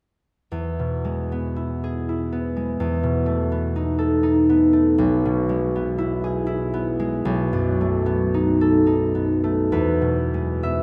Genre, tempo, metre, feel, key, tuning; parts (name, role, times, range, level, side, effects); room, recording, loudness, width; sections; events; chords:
classical, solo harp piece; 66-85 BPM; 3/4; rubato; E major; A4 = 441 Hz
concert harp; solo; 0.5-10.8 s; B1 to E5; -22 LUFS; equal
wet cathedral reverb, RT60 5.5 s; in a vast, echoing space; -22 LUFS; mono
0.5-9.7 A section; 9.7-10.8 B section
0.5 E; 2.8 B7/E; 5.0 E/B; 7.3 B7; 9.7 E